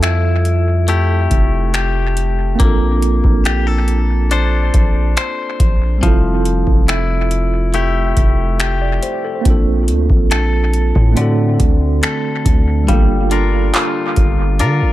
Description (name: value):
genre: contemporary R&B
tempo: 70 BPM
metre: 4/4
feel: straight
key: F major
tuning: A4 = 440 Hz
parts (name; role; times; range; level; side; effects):
- tine electric piano; accompaniment; 0.0-14.9 s; G3 to D5; -21 LUFS; right 4 dB; medium stereo tremolo, analog delay
- direct-recorded clean electric guitar; arpeggios; 0.0-14.9 s; D3 to C5; -20 LUFS; left 5 dB; analog delay
- long sustained 808-style bass; bass; 0.0-14.9 s; F1 to D3; -16 LUFS; equal; none
- booming analog drum machine; drums; 0.0-14.8 s; finger snaps, handclaps, hi-hat, kick drum; -15 LUFS; equal; none
- worn celesta; texture; 12.9-14.3 s; F5; -28 LUFS; right 9 dB; stereo widening, analog delay
room: little or no reverb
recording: echo-heavy mix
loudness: -12 LUFS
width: side -15 dB against mid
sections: 0.0-12.9 A section; 12.9-14.9 B section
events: none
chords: 0.0 Fmaj9; 2.6 Bbmaj9; 6.0 Fmaj9; 9.5 Bbmaj9; 11.2 D7; 12.9 Gm7